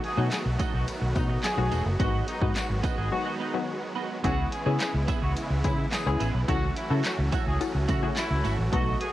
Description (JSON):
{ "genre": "dance-pop", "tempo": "107 BPM", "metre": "4/4", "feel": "straight", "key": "C# minor", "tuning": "A4 = 440 Hz", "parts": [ { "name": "clear horn section", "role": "melody", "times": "0.0-9.1 s", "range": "D#4 to G#4", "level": "-34 LUFS", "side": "equal", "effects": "none" }, { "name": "punchy chord stab", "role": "accompaniment", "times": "0.0-9.0 s", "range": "F#3 to A4", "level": "-33 LUFS", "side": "left 6 dB", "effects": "chorus, sidechain pumping, cassette tape" }, { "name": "supersaw chords", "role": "sustained chords", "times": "0.0-9.1 s", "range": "B2 to F#4", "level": "-34 LUFS", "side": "right 1 dB", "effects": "sidechain pumping, cassette tape" }, { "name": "twelve-string electric guitar", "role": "riff", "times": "0.0-9.0 s", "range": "A3 to G#4", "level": "-36 LUFS", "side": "right 9 dB", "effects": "analog chorus, cassette tape" }, { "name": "punchy analog drum machine", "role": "drums", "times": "0.0-9.1 s", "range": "handclaps, hi-hat, kick drum, snare drum", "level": "-30 LUFS", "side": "equal", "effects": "cassette tape" }, { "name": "tambourine", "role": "percussion", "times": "0.0-8.6 s", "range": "none", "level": "-47 LUFS", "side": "left 9 dB", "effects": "none" }, { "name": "vintage muted fingered electric bass", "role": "bass", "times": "0.2-8.9 s", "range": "E1 to C#3", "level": "-27 LUFS", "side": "equal", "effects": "sidechain pumping" } ], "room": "light reverb", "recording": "home recording on cassette", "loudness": "-24 LUFS", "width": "side -14 dB against mid", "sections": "0.0-4.2 A section; 4.2-9.1 A section", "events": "drop 0.0-4.2, 4.2-9.1; break 3.1-4.2", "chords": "0.0 B7; 2.0 G#m7; 4.2 C#m7; 6.5 F#m7/C#" }